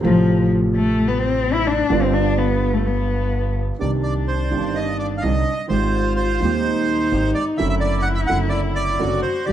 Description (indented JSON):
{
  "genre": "tango",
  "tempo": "127 BPM",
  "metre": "4/4",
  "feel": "rubato",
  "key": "unclear",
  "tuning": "A4 = 440 Hz",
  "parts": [
    { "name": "dark cello", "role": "second line", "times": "0.0-9.5 s", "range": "F3 to G4", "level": "-22 LUFS", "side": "left 4 dB", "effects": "slapback echo" },
    { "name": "warm grand piano", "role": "accompaniment", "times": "0.0-9.5 s", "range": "Eb1 to G4", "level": "-23 LUFS", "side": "right 4 dB", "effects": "none" },
    { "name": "upright bass", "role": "bass", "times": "0.0-9.5 s", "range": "F#1 to Eb2", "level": "-23 LUFS", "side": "equal", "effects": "none" },
    { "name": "bandoneon", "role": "melody", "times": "3.8-9.5 s", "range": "C5 to F#5", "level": "-24 LUFS", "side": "right 2 dB", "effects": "none" }
  ],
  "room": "light reverb",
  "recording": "dark, warm production",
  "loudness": "-17 LUFS",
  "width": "side -10 dB against mid",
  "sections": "0.0-3.8 A section; 3.8-9.5 B section",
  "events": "cello solo 0.0-3.8",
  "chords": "0.0 F/A; 1.9 G7; 3.8 Cmadd9; 5.7 Abmaj7; 7.6 D7/F#"
}